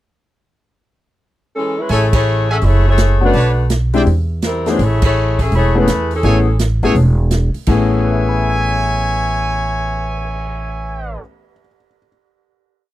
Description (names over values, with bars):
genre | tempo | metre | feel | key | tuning
jazz, big band swing | 166 BPM | 4/4 | swing 65% on 8ths | A major | A4 = 437 Hz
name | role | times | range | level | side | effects
warm saxophone section | melody | 1.6-6.6 s | E3 to E5 | -18 LUFS | left 2 dB | none
bright trumpet section | stabs | 1.9-4.0, 6.2-11.2 s | A4 to A5 | -20 LUFS | right 1 dB | none
upright bass | bass | 1.9-11.1 s | E1 to E2 | -16 LUFS | right 1 dB | none
swinging big-band drum kit | drums | 1.9-10.5 s | crash cymbal, cymbal swell, hi-hat, kick drum, snare drum | -20 LUFS | right 1 dB | none
clear grand piano | accompaniment | 3.2-12.1 s | A2 to B6 | -18 LUFS | left 4 dB | none
room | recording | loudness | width
little or no reverb | dry, close 1970s-style studio recording | -13 LUFS | side -15 dB against mid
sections
0.4-1.9 pickup bar; 1.9-7.7 A section; 7.7-10.6 final chord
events
band accent 2.1, 5.0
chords
0.4 E6; 1.9 Amaj7; 2.6 F#m9; 3.3 Bm9; 4.1 Eaug; 7.7 Amaj7